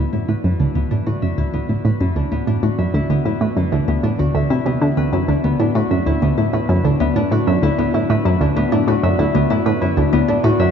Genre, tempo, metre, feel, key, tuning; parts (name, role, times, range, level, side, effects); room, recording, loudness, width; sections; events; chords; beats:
ambient, sequencer-driven space music; 96 BPM; 4/4; straight; A4 = 435 Hz
Celtic harp; arpeggios; 0.0-10.7 s; E3 to E5; -21 LUFS; left 4 dB; auto-pan, analog delay
analog pluck; riff; 0.0-10.7 s; D2 to D3; -16 LUFS; right 1 dB; chorus, analog delay
wet huge ambient reverb, RT60 7.2 s; nothing above 7.5 kHz; -15 LUFS; side -7 dB against mid
0.0-10.7 A section
fade-in on harp 0.0-10.7; filter sweep on synth arpeggio sound 0.0-10.7
0.0 D
| 0.13 0.75 1.38 2.00 | 2.63 3.25 3.88 4.50 | 5.13 5.75 6.38 7.00 | 7.63 8.25 8.88 9.50 | 10.13